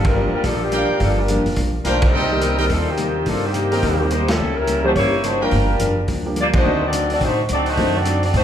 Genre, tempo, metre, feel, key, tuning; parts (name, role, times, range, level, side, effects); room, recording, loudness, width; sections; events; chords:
jazz, big band swing; 212 BPM; 4/4; swing 62% on 8ths; G minor; A4 = 442 Hz
mellow saxophone section; melody; 0.0-8.4 s; Eb3 to D5; -20 LUFS; left 2 dB
vintage hollow-body jazz guitar; accompaniment; 0.0-8.4 s; G2 to E4; -26 LUFS; left 3 dB
upright bass; bass; 0.0-8.4 s; F1 to A2; -22 LUFS; right 1 dB
vintage drum kit; drums; 0.0-8.4 s; hi-hat, kick drum, ride cymbal, snare drum; -24 LUFS; equal
warm grand piano; accompaniment; 0.2-7.9 s; Eb3 to G4; -25 LUFS; right 2 dB
clear trumpet section; stabs; 0.7-8.0 s; Bb4 to G5; -25 LUFS; right 2 dB
wet recital hall reverb, RT60 1.4 s; recorded in a church or concert hall; -16 LUFS; side -9 dB against mid
0.0-8.4 A section
band accent 0.0, 2.0, 4.3, 6.5
0.0 Gm7; 2.1 Cm7; 4.4 C#dim7; 5.5 Gm7; 6.7 D7b9